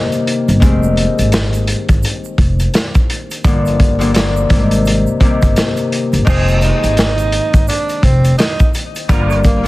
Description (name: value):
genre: hip hop, boom-bap hip-hop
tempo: 85 BPM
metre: 4/4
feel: swing 60% on 16ths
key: F dorian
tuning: A4 = 440 Hz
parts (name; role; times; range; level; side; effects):
- Celtic harp; accompaniment; 0.0-9.7 s; C3 to G4; -18 LUFS; left 3 dB; none
- crunchy breakbeat drum kit; drums; 0.1-9.6 s; crash cymbal, hi-hat, kick drum, snare drum; -14 LUFS; equal; none
- egg shaker; percussion; 0.1-9.6 s; none; -36 LUFS; right 10 dB; none
- upright bass; bass; 0.5-9.7 s; F1 to Ab1; -15 LUFS; equal; none
- breathy tenor saxophone; melody; 6.3-9.7 s; Bb3 to Eb4; -19 LUFS; right 3 dB; ping-pong delay
- warm horn section; stabs; 6.3-9.4 s; F3 to Bb4; -24 LUFS; right 3 dB; ping-pong delay
room: little or no reverb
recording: dense, heavily limited modern master, vinyl crackle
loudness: -11 LUFS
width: side -19 dB against mid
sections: 0.0-6.3 A section; 6.3-9.7 B section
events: none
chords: 0.0 Abmaj7 (rootless); 0.6 Fm7; 3.4 Gm7; 4.5 Abmaj7; 6.3 Fm7; 9.1 Gm7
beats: | 0.62 1.33 2.03 2.74 | 3.44 4.15 4.86 5.56 | 6.27 6.97 7.68 8.39 | 9.09